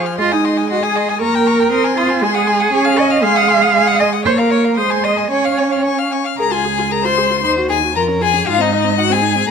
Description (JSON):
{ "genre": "quick classical-period movement for string quartet", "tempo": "117 BPM", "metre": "2/4", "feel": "rubato", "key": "Db major", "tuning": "A4 = 440 Hz", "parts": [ { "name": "warm violin", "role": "melody", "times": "0.0-9.5 s", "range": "Eb5 to F6", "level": "-19 LUFS", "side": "left 11 dB", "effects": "none" }, { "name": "rich violin", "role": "second line", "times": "0.0-9.5 s", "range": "Eb4 to C6", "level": "-20 LUFS", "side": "left 4 dB", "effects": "none" }, { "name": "warm viola", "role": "accompaniment", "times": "0.0-9.5 s", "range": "F3 to Ab4", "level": "-19 LUFS", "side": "right 2 dB", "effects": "none" }, { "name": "warm cello", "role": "bass", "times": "0.2-9.5 s", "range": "Db2 to F5", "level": "-17 LUFS", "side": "right 4 dB", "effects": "none" } ], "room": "light reverb", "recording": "none", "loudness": "-12 LUFS", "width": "side -6 dB against mid", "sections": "0.0-6.4 A section; 6.4-9.5 A section", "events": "none", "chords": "0.2 Ab; 1.2 Gdim/Bb; 1.7 Ab/C; 2.2 Ab7; 2.7 Db; 3.2 Ab7; 4.3 Bbm; 4.8 Ab; 5.3 Db; 7.4 Cdim/Eb; 8.0 Db/F; 8.5 Ab" }